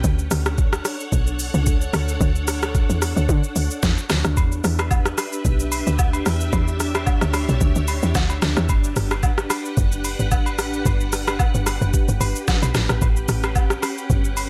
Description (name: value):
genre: amapiano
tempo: 111 BPM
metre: 4/4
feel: swing 55% on 16ths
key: E dorian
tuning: A4 = 439 Hz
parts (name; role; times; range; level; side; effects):
- soft string machine; sustained chords; 0.0-14.5 s; C#4 to F#5; -31 LUFS; equal; ensemble chorus
- woody log drum bass; bass; 0.0-14.5 s; F#1 to D3; -24 LUFS; equal; none
- smooth R&B drum kit; drums; 0.0-14.5 s; hi-hat, kick drum, rim click, shaker, snare drum; -24 LUFS; equal; none
- agogo bells and woodblock; percussion; 4.4-14.5 s; none; -32 LUFS; equal; none
room: little or no reverb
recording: none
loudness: -21 LUFS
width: mono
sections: 0.0-14.5 A section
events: none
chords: 0.0 Dmaj7; 4.4 Em7; 8.7 Gmaj7; 12.7 A13